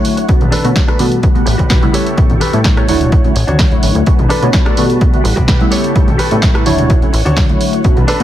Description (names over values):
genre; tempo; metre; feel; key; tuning
filtered disco house; 127 BPM; 4/4; straight; unclear; A4 = 440 Hz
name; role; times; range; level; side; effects
funky polysynth comp; accompaniment; 0.0-8.2 s; C#3 to C#5; -17 LUFS; equal; chorus, phaser, sidechain pumping, low-pass filter
string machine, full ensemble; sustained chords; 0.0-8.2 s; G3 to C#6; -23 LUFS; equal; ensemble chorus, sidechain pumping, low-pass filter
punchy analog drum machine; drums; 0.0-8.2 s; hi-hat, rim click, snare drum; -20 LUFS; right 1 dB; sidechain pumping on hats, sidechain pumping on cymbals
tambourine and congas; percussion; 0.1-8.2 s; none; -21 LUFS; left 1 dB; none
direct-recorded clean electric guitar; riff; 0.2-8.2 s; D4 to D5; -20 LUFS; equal; sidechain pumping, low-pass filter
plucky analog bass; bass; 0.3-8.2 s; D1 to B2; -16 LUFS; equal; sidechain pumping, low-pass filter
electronic kick drum; drums; 0.3-7.9 s; none; -12 LUFS; equal; none
room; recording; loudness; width
light reverb, digital ambience; none; -9 LUFS; side -12 dB against mid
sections
0.0-8.2 A section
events
filter sweep 0.0-8.2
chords
0.3 Bm7; 1.2 Gmaj7; 1.9 A7; 2.9 Dmaj7; 4.1 Bm7; 5.0 Gmaj7; 5.7 A7; 6.7 Dmaj7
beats
| 0.29 0.76 1.23 1.71 | 2.18 2.65 3.12 3.60 | 4.07 4.54 5.01 5.49 | 5.96 6.43 6.90 7.37 | 7.85